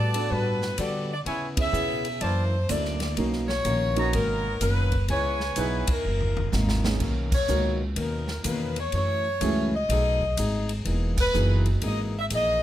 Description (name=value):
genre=jazz, big band swing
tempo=125 BPM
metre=4/4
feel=swing 66% on 8ths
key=B major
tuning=A4 = 440 Hz
part: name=warm saxophone section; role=melody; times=0.0-12.6 s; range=A#4 to E5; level=-28 LUFS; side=left 1 dB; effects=none
part: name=picked plugged-in swing-style acoustic guitar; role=accompaniment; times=0.0-12.6 s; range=F#2 to A4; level=-32 LUFS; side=left 4 dB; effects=none
part: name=warm trumpet section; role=stabs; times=0.0-6.0 s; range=B3 to A#5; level=-32 LUFS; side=right 2 dB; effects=none
part: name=upright bass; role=bass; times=0.0-12.6 s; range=E1 to D3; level=-27 LUFS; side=equal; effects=none
part: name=warm concert grand piano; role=accompaniment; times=0.1-12.1 s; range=B2 to A#4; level=-32 LUFS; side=right 5 dB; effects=none
part: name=swinging big-band drum kit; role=drums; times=0.1-12.4 s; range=crash cymbal, hi-hat, kick drum, ride cymbal, snare drum, toms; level=-32 LUFS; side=equal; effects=none
room=light reverb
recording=close, detailed microphones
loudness=-23 LUFS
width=side -12 dB against mid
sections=0.0-7.0 A section; 7.0-12.6 A section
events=band accent 1.5, 5.8, 7.2, 11.1; drum fill 6.0-7.0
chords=0.0 Gmaj9; 1.3 C#m7; 2.2 F#7alt; 3.2 Bmaj9; 5.1 C#m7; 6.0 F#13; 7.0 Bmaj9; 8.9 F#m7; 9.9 B6; 10.9 Emaj9#11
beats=0.31 0.79 | 1.27 1.74 2.22 2.70 | 3.18 3.66 4.13 4.61 | 5.09 5.57 6.05 6.53 | 7.01 7.49 7.97 8.45 | 8.93 9.41 9.89 10.37 | 10.86 11.34 11.82 12.30